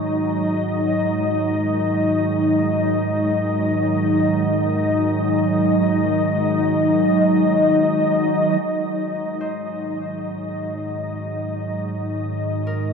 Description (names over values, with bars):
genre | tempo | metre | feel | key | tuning
ambient | free time | none | none | unclear | A4 = 440 Hz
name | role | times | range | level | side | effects
glassy FM pad | sustained chords | 0.0-12.9 s | Gb3 to Eb5 | -19 LUFS | equal | ensemble chorus, built-in reverb
round analog bass | bass | 0.0-12.9 s | Ab2 | -28 LUFS | right 1 dB | none
analog drone | drone | 0.0-12.9 s | Eb3 | -30 LUFS | right 1 dB | chorus
concert harp | arpeggios | 9.4-12.9 s | Bb4 to C5 | -40 LUFS | left 3 dB | tape echo
room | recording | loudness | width
wet huge ambient reverb, RT60 8.5 s | dreamy mix soaked in reverb | -18 LUFS | side -6 dB against mid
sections
0.0-8.6 A section; 8.6-12.9 B section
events
fade-in on analog synth bass 0.0-8.6; fade-in on synth drone 0.0-8.6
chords
0.0 Ab5; 8.6 Ab7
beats
free time